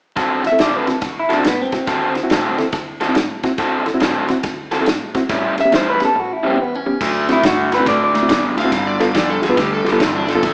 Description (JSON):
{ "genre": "electric blues shuffle", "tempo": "140 BPM", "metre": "4/4", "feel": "swing 66% on 8ths", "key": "D mixolydian", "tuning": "A4 = 440 Hz", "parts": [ { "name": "bright reed electric piano", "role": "accompaniment", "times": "0.2-10.4 s", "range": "D2 to B4", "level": "-24 LUFS", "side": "equal", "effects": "overdrive" }, { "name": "crunchy overdriven guitar", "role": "riff", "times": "0.2-10.5 s", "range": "G2 to A4", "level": "-22 LUFS", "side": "equal", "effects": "none" }, { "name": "warm soul drum kit", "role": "drums", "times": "0.2-10.5 s", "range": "crash cymbal, kick drum, ride cymbal, snare drum", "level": "-24 LUFS", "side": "equal", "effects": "none" }, { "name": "electric guitar through a small old amp", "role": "melody", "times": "0.5-2.8, 5.6-8.4 s", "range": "B3 to E5", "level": "-20 LUFS", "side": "equal", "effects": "none" }, { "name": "vintage muted fingered electric bass", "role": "bass", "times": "7.0-10.5 s", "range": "G1 to A2", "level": "-32 LUFS", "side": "equal", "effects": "none" }, { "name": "overdriven slide guitar", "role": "second line", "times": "8.6-10.5 s", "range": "D4 to F5", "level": "-25 LUFS", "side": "equal", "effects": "none" } ], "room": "wet large studio reverb, RT60 1.2 s", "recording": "band playing live in one room, vinyl crackle, small speaker sound", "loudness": "-17 LUFS", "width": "mono", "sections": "0.2-7.0 A section; 7.0-10.5 B section", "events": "break 6.2-7.0", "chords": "0.2 D7; 5.3 A7; 7.0 D7; 8.7 G7" }